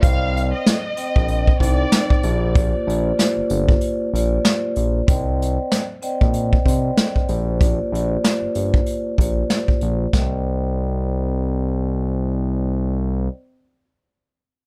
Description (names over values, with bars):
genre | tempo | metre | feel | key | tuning
hip hop, boom-bap hip-hop | 95 BPM | 4/4 | swing 57% on 16ths | C minor | A4 = 435 Hz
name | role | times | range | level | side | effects
warm studio violin section | melody | 0.0-2.5 s | D5 to F5 | -29 LUFS | equal | high-pass filter, low-pass filter, tape echo
vibraphone with soft mallets | accompaniment | 0.0-13.3 s | Bb3 to G5 | -26 LUFS | equal | high-pass filter, low-pass filter, plate reverb
smooth synth bass | bass | 0.0-13.3 s | G1 to C2 | -24 LUFS | equal | none
vintage brush drum kit | drums | 0.0-10.3 s | hi-hat, kick drum, snare drum | -20 LUFS | equal | none
room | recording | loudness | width
light reverb | none | -20 LUFS | mono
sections
0.0-5.1 A section; 5.1-10.1 B section; 10.1-12.7 C section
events
kick muted 3.8-5.1; filter sweep on vibraphone 5.1-10.1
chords
0.0 Cmadd9; 2.2 Bb6; 5.1 Cmadd9; 7.3 Bb6; 10.1 Cmadd9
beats
| 0.03 0.66 1.29 1.92 | 2.56 3.19 3.82 4.45 | 5.08 5.71 6.34 6.98 | 7.61 8.24 8.87 9.50 | 10.13 10.77 11.40 12.03